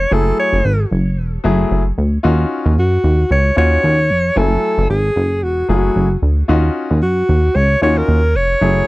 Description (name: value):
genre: early-eighties boogie funk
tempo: 113 BPM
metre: 4/4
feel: swing 56% on 16ths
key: unclear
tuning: A4 = 440 Hz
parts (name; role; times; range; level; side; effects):
- breathy alto saxophone; melody; 0.0-8.9 s; Gb4 to Db5; -17 LUFS; equal; none
- plucky analog bass; bass; 0.0-8.8 s; Fb1 to Gb2; -14 LUFS; equal; none
- clear baby grand piano; accompaniment; 0.1-8.9 s; Gb3 to Ab5; -19 LUFS; left 3 dB; none
room: little or no reverb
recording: dry, close 1970s-style studio recording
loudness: -12 LUFS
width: side -20 dB against mid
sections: 0.0-8.9 A section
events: none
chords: 0.1 Gbm9; 2.2 Ebm9; 4.4 Gbm9; 6.5 Ebm9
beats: | 0.12 0.65 1.18 1.71 | 2.24 2.77 3.30 3.83 | 4.37 4.90 5.43 5.96 | 6.49 7.02 7.55 8.08 | 8.61